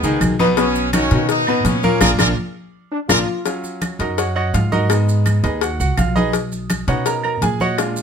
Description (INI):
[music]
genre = latin, salsa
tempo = 166 BPM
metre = 4/4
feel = straight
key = Eb minor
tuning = A4 = 439 Hz
[part]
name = clear trumpet section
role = melody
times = 0.0-3.2 s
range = Cb4 to D#5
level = -20 LUFS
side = left 1 dB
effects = slapback echo
[part]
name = bright grand piano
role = accompaniment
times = 0.0-8.0 s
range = Bb2 to Bb5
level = -20 LUFS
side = equal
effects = none
[part]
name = upright bass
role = bass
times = 0.0-8.0 s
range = Bb1 to B2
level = -20 LUFS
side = right 1 dB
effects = none
[part]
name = congas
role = percussion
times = 0.0-8.0 s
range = none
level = -23 LUFS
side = left 1 dB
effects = none
[part]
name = maracas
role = percussion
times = 0.0-8.0 s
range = none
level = -32 LUFS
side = right 5 dB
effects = none
[part]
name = claves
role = percussion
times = 0.2-8.0 s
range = none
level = -27 LUFS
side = right 7 dB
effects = none
[part]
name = cowbell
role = percussion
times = 0.2-8.0 s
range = none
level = -25 LUFS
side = left 13 dB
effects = none
[part]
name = warm trombone section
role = second line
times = 2.9-3.4 s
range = D4 to F4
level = -24 LUFS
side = left 4 dB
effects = none
[sound]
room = light reverb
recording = close, detailed microphones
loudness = -15 LUFS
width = side -7 dB against mid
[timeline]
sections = 0.0-3.5 A section; 3.5-8.0 B section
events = drum fill 2.0-3.5; band accent 2.0-3.5; grand piano solo 3.5-8.0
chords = 0.0 Abm; 0.6 Badd9; 2.0 Bb; 3.5 Ebm7; 4.9 Abm; 6.3 Badd9